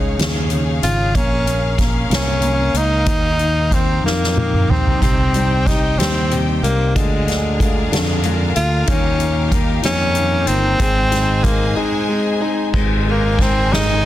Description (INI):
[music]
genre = six-eight pop ballad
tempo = 62 BPM (dotted quarters)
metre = 6/8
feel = straight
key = Ab major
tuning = A4 = 440 Hz
[part]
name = clear tenor saxophone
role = melody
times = 0.0-14.1 s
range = Ab3 to F4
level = -20 LUFS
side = equal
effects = none
[part]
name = warm concert grand piano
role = accompaniment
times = 0.0-14.1 s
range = C3 to Eb4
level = -24 LUFS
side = equal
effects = none
[part]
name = rich studio string section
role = sustained chords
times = 0.0-14.1 s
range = Db4 to Ab5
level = -26 LUFS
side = left 1 dB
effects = none
[part]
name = fingered electric bass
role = bass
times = 0.0-14.1 s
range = G1 to F2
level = -20 LUFS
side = equal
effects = none
[part]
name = soft-mallet drum kit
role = drums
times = 0.2-14.1 s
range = crash cymbal, hi-hat, kick drum, ride cymbal, snare drum, toms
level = -20 LUFS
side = equal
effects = none
[part]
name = picked steel-string acoustic guitar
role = arpeggios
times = 5.0-14.1 s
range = Ab2 to Bb4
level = -26 LUFS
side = left 6 dB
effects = none
[sound]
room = studio reverb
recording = dense, heavily limited modern master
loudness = -14 LUFS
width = side -13 dB against mid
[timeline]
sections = 0.0-12.7 A section; 12.7-14.1 B section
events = drum fill 4.0-5.0; break 11.8-12.7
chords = 0.0 Dbadd9; 1.1 Bbm7; 3.1 Ebadd9; 5.0 Cm; 7.0 Bb7/D; 8.9 Ebadd9; 10.8 Ab; 12.7 Abadd9